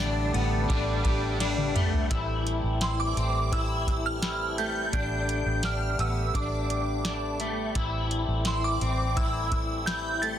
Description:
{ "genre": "dream pop", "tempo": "85 BPM", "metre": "4/4", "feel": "straight", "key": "A minor", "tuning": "A4 = 438 Hz", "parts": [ { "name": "shimmering bell with halo", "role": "melody", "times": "0.0-10.4 s", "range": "C6 to A6", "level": "-32 LUFS", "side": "right 3 dB", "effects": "ensemble chorus, digital delay" }, { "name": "overdriven semi-hollow guitar", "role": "accompaniment", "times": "0.0-2.6 s", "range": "A2 to B4", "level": "-34 LUFS", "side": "right 3 dB", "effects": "tremolo, ensemble chorus" }, { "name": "mellow accordion", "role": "sustained chords", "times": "0.0-10.4 s", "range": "D3 to G4", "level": "-35 LUFS", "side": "equal", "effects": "none" }, { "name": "electric guitar at the edge of break-up", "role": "arpeggios", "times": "0.0-10.4 s", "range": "A3 to E4", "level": "-32 LUFS", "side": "left 3 dB", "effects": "ensemble chorus, digital delay" }, { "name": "vintage muted fingered electric bass", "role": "bass", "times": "0.0-10.4 s", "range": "A1", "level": "-30 LUFS", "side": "equal", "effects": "none" }, { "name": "soft vintage rhythm box", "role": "drums", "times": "0.3-10.4 s", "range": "hi-hat, kick drum, ride cymbal, snare drum, toms", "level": "-30 LUFS", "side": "equal", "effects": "none" } ], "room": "light reverb", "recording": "dense, heavily limited modern master", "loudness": "-25 LUFS", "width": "side -10 dB against mid", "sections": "0.0-2.1 A section; 2.1-10.4 B section", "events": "drum fill 1.4-2.1", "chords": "0.0 Gadd9/A; 2.1 Am7; 4.9 Gadd9/A; 7.8 Am7" }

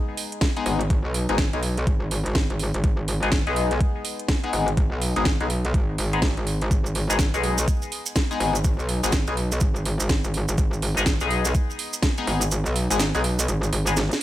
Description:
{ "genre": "bass house", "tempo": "124 BPM", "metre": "4/4", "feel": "swing 61% on 16ths", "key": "G# minor", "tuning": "A4 = 440 Hz", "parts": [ { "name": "band-passed chord stab", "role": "stabs", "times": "0.0-13.9 s", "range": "G#3 to G#4", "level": "-27 LUFS", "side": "left 4 dB", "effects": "phaser, sidechain pumping, digital delay" }, { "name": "house drum kit", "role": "drums", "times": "0.2-14.2 s", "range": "hi-hat, snare drum", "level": "-28 LUFS", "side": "right 1 dB", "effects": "studio reverb" }, { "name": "electronic kick drum", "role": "drums", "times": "0.4-12.1 s", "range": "none", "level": "-22 LUFS", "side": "equal", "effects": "overdrive, studio reverb" }, { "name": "metallic wobble bass", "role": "bass", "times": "0.7-14.1 s", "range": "G#1 to B1", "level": "-24 LUFS", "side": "equal", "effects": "chorus, overdrive, sidechain pumping" }, { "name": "maracas", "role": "percussion", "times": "6.7-14.2 s", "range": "none", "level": "-30 LUFS", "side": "right 5 dB", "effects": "none" } ], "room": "little or no reverb", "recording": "none", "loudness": "-21 LUFS", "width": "side -14 dB against mid", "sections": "0.0-14.2 A section", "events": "kick drops out 12.5-14.2; drum fill 14.0", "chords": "0.0 G#m" }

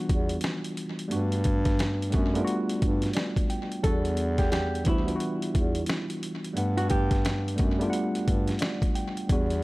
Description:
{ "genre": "hip hop, boom-bap hip-hop", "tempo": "88 BPM", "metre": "4/4", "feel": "swing 62% on 16ths", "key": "unclear", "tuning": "A4 = 440 Hz", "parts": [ { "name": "mellow tine electric piano", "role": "accompaniment", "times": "0.0-9.6 s", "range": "E3 to G5", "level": "-30 LUFS", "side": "equal", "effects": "medium stereo tremolo, cassette tape, high-pass filter, low-pass filter" }, { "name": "warm bass clarinet", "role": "bass", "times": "0.1-9.6 s", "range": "D2 to G2", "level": "-28 LUFS", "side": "equal", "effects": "none" }, { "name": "boom bap sampler-style drum kit", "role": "drums", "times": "0.1-9.6 s", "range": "hi-hat, kick drum, snare drum", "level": "-28 LUFS", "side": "equal", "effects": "none" }, { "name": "flamenco guitar", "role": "melody", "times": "3.8-8.6 s", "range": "E4 to A4", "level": "-33 LUFS", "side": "right 1 dB", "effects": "high-pass filter, low-pass filter, tape echo" } ], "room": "small room ambience", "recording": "echo-heavy mix, vinyl crackle", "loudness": "-24 LUFS", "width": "side -21 dB against mid", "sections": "0.0-9.6 A section", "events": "none", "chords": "0.0 Em7; 1.1 Gmaj7; 3.8 Em7; 6.6 Gmaj7" }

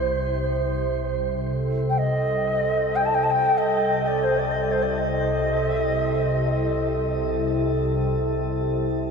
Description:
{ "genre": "world meditative, free-time meditation music", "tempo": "free time", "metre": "none", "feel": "none", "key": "C kumoi", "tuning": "A4 = 440 Hz", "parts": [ { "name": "organ-like drone", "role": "drone", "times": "0.0-9.1 s", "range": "C2", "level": "-25 LUFS", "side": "left 1 dB", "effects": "ensemble chorus, built-in reverb" }, { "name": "glass harmonica", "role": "texture", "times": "0.0-8.8 s", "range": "A4 to C5", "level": "-27 LUFS", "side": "right 4 dB", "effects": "shimmer reverb" }, { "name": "mellow Native American-style cedar flute", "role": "melody", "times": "1.9-6.9 s", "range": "C5 to A5", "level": "-25 LUFS", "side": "equal", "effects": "shimmer reverb, ping-pong delay" } ], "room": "wet huge ambient reverb, RT60 8.6 s", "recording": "in a vast, echoing space", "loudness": "-21 LUFS", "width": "side -5 dB against mid", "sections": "0.7-9.1 A section", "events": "none", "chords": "none" }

